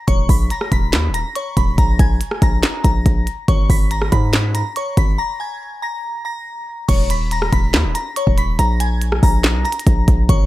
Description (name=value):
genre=hip hop, trap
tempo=141 BPM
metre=4/4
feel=half-time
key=unclear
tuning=A4 = 442 Hz
part: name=glassy synth bell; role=melody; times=0.0-10.5 s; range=Db5 to Cb7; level=-23 LUFS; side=left 1 dB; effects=chorus, phaser, digital delay
part: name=hard-hitting 808-style bass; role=bass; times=0.1-10.5 s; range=Eb1 to Ab2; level=-18 LUFS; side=equal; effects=none
part: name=minimal click drum kit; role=drums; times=0.1-10.4 s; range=crash cymbal, handclaps, hi-hat, kick drum, rim click, snare drum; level=-16 LUFS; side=equal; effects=none
room=little or no reverb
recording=none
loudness=-15 LUFS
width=side -16 dB against mid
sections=0.0-6.9 A section; 6.9-10.5 B section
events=break 5.2-6.9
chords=0.1 Eb5; 1.8 Absus2/Bb; 3.5 Abm; 5.2 Absus2; 6.9 Eb5; 8.6 Absus2/Bb